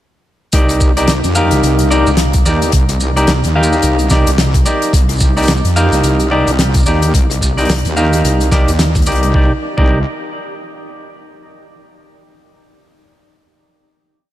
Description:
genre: glitch hop.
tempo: 109 BPM.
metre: 4/4.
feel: swing 59% on 16ths.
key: C minor.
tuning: A4 = 440 Hz.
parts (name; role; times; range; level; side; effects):
semi-hollow electric guitar; stabs; 0.5-10.0 s; Eb4 to F5; -16 LUFS; equal; sidechain pumping, analog delay.
wobble bass; bass; 0.5-10.0 s; C2 to F2; -15 LUFS; equal; chorus, tube saturation.
damped 70s drum kit; drums; 0.5-9.3 s; hi-hat, rim click, shaker, snare drum; -19 LUFS; left 1 dB; none.
electronic kick drum; drums; 0.5-9.9 s; none; -13 LUFS; equal; none.
room: moderate huge ambient reverb, RT60 4.9 s.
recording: dreamy mix soaked in reverb.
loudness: -10 LUFS.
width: side -13 dB against mid.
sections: 0.5-9.3 drop; 9.3-11.5 final chord.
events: drop 0.5-9.3.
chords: 0.5 Cm9.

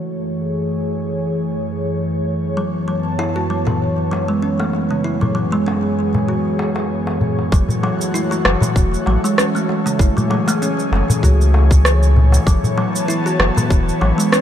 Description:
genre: organic downtempo.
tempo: 97 BPM.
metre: 4/4.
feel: swing 55% on 16ths.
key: F# minor.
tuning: A4 = 440 Hz.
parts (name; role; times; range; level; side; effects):
airy breathy pad; sustained chords; 0.0-14.4 s; F#2 to A5; -20 LUFS; equal; chorus, sidechain pumping.
kalimba; arpeggios; 2.6-14.4 s; C#3 to F#4; -21 LUFS; right 1 dB; digital delay.
darbuka; percussion; 3.2-14.2 s; none; -22 LUFS; left 2 dB; none.
warm sub bass; bass; 7.5-14.1 s; E1 to C#2; -14 LUFS; equal; none.
electronic cabasa and rim click; drums; 7.5-14.4 s; none; -20 LUFS; right 1 dB; none.
electronic kick drum; drums; 7.5-13.8 s; none; -15 LUFS; equal; none.
room: moderate lush hall reverb, RT60 2.2 s.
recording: dark, warm production.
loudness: -15 LUFS.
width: side -10 dB against mid.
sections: 0.0-7.5 A section; 7.5-14.4 B section.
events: filter sweep on analog synth pad 0.0-7.5.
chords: 0.1 Amaj7/F#; 2.6 B9sus4/F#; 5.0 C#m7/F#; 7.5 F#m7; 10.0 Amaj7/F#; 12.5 B9sus4/F#.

